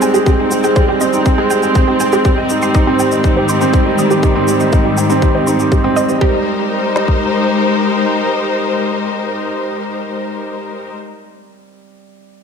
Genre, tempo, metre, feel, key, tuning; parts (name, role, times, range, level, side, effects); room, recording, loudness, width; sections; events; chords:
piano and strings electronica; 121 BPM; 4/4; straight; Ab major; A4 = 440 Hz
rich studio string section; sustained chords; 0.0-10.9 s; Ab2 to C5; -16 LUFS; left 2 dB; low-pass filter
analog pluck; arpeggios; 0.0-6.4 s; G4 to Eb6; -21 LUFS; right 2 dB; chorus, sidechain pumping, ping-pong delay
clear upright piano; riff; 0.0-12.4 s; G3 to Eb5; -16 LUFS; right 2 dB; ping-pong delay
shaker; drums; 0.0-6.2 s; -27 LUFS; equal; overdrive
organic electronic drum kit; drums; 0.3-7.2 s; kick drum, snare drum; -15 LUFS; left 1 dB; overdrive
moderate lush hall reverb, RT60 1.9 s; -12 LUFS; side -6 dB against mid
0.0-6.2 A section; 6.2-10.2 B section
filter sweep on string section 0.0-6.2
0.0 Abmaj7; 2.2 Cm/Ab; 6.2 Abmaj7